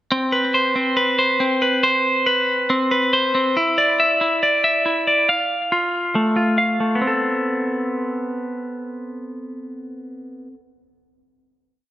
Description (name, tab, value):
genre	hip hop, drill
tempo	139 BPM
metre	4/4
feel	half-time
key	A minor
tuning	A4 = 440 Hz
part	clean electric guitar	solo	0.1-10.6 s	A3 to F5	-17 LUFS	equal	spring reverb, ping-pong delay
room	moderate plate reverb, RT60 2.7 s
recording	low-pass filter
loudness	-16 LUFS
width	side -14 dB against mid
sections	0.1-7.0 breakdown; 7.0-10.5 final chord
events	none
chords	0.1 N.C.; 3.6 Dsus2; 5.3 F; 7.0 Amadd9